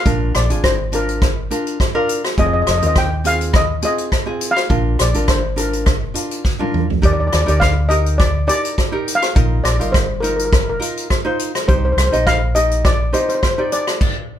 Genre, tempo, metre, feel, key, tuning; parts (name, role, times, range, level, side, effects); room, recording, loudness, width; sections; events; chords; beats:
calypso; 103 BPM; 4/4; swing 53% on 16ths; A4 = 440 Hz
steel pan; melody; 0.0-14.4 s; Bb4 to G5; -20 LUFS; left 1 dB
ukulele; accompaniment; 0.1-13.8 s; C4 to Eb5; -22 LUFS; right 1 dB
fingered electric bass; bass; 0.1-13.1 s; F1 to Eb2; -19 LUFS; equal
unplugged drum kit; drums; 0.1-14.2 s; crash cymbal, hi-hat, kick drum, rim click, snare drum, toms; -18 LUFS; equal
moderate studio reverb, RT60 0.5 s; band playing live in one room; -14 LUFS; side -10 dB against mid
0.0-14.4 A section
drum fill 6.4-7.0
0.1 Bb7; 2.4 Fm7; 4.7 Bb7; 7.0 Ebmaj7; 9.4 Bbsus4; 11.7 Cm7
| 0.06 0.64 1.22 1.80 | 2.38 2.96 3.54 4.12 | 4.70 5.29 5.87 6.45 | 7.03 7.61 8.19 8.77 | 9.35 9.94 10.52 11.10 | 11.68 12.26 12.85 13.43 | 14.01